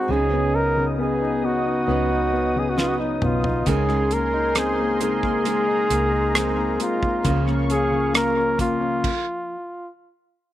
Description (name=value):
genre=pop ballad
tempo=67 BPM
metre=4/4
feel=straight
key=unclear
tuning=A4 = 439 Hz
part: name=warm flugelhorn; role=melody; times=0.0-9.9 s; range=F4 to Bb4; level=-23 LUFS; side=equal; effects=slapback echo
part: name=clear grand piano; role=accompaniment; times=0.0-9.1 s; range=Db3 to Eb4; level=-24 LUFS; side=left 4 dB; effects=slapback echo
part: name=warm analog pad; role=sustained chords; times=0.0-9.0 s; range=Cb4 to Eb6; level=-31 LUFS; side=right 1 dB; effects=chorus
part: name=flamenco guitar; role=arpeggios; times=0.0-9.6 s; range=Db3 to Cb5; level=-31 LUFS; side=right 7 dB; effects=none
part: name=vintage muted fingered electric bass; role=bass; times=0.1-9.0 s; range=Cb2 to Db2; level=-27 LUFS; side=right 1 dB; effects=none
part: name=damped 70s drum kit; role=drums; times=2.8-9.3 s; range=crash cymbal, hi-hat, kick drum, rim click, snare drum, toms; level=-25 LUFS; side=right 1 dB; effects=none
room=little or no reverb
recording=recorded outdoors, with no room sound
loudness=-19 LUFS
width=side -13 dB against mid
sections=0.0-10.5 A section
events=drum fill 2.8-3.7; stop 9.0-10.5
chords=0.1 Cb/Db; 3.7 Abadd9/Db; 7.3 Bbm/Db